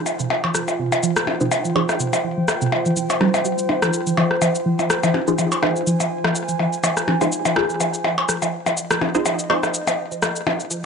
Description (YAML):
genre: minimal techno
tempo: 124 BPM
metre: 4/4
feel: swing 55% on 16ths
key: F minor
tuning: A4 = 435 Hz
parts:
  - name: warbly tape-like pad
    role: texture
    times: 0.0-10.9 s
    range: F4 to Ab5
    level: -26 LUFS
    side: right 1 dB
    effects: chorus, built-in reverb
  - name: shaker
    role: drums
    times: 0.1-10.8 s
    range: none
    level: -29 LUFS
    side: left 1 dB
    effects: none
  - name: electronic percussion blips and rim click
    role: percussion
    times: 0.1-10.6 s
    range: none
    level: -21 LUFS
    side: left 1 dB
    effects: none
  - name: resonant blip pluck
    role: riff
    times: 0.2-10.7 s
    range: C3 to G3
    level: -24 LUFS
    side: right 1 dB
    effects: phaser, analog chorus, dub echo
  - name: filtered dub chord stab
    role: stabs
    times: 1.4-9.6 s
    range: Eb4 to C5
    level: -24 LUFS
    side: left 1 dB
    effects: phaser, analog chorus, digital delay
room: moderate lush hall reverb, RT60 2.4 s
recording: nothing above 10.5 kHz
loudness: -18 LUFS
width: side -6 dB against mid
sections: 0.0-10.9 A section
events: filter sweep on synth pluck 0.0-10.9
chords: 0.0 Fm7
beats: | 0.06 0.55 1.03 1.51 | 2.00 2.48 2.97 3.45 | 3.93 4.42 4.90 5.38 | 5.87 6.35 6.84 7.32 | 7.80 8.29 8.77 9.26 | 9.74 10.22 10.71